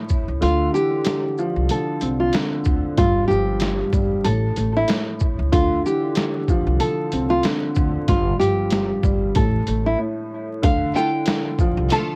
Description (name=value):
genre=hip hop, boom-bap hip-hop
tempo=94 BPM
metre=4/4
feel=swing 55% on 16ths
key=D minor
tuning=A4 = 440 Hz
part: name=dark upright piano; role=accompaniment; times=0.0-12.2 s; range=G2 to E4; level=-26 LUFS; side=equal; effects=high-pass filter, low-pass filter, cassette tape
part: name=trip hop sampler-style drum kit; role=drums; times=0.1-12.1 s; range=hi-hat, kick drum, shaker, snare drum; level=-25 LUFS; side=equal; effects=none
part: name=upright bass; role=bass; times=0.3-11.9 s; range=G1 to D2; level=-26 LUFS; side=equal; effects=none
part: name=nylon-string guitar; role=melody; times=0.4-12.2 s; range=E4 to A5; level=-25 LUFS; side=equal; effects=high-pass filter, low-pass filter, cassette tape, analog delay
part: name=clear studio string section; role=stabs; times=10.9-12.2 s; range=A3 to A4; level=-30 LUFS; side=equal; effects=high-pass filter, low-pass filter, cassette tape, analog delay
room=little or no reverb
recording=home recording on cassette, vinyl crackle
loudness=-20 LUFS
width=mono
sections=0.0-10.6 A section; 10.6-12.2 B section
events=kick muted 0.4-1.7; break 10.0-10.6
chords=0.4 Dm9; 3.0 Fsus2/G; 4.3 N.C.; 5.5 Dm9; 8.1 Fsus2/G; 9.4 A5; 10.6 Dmadd9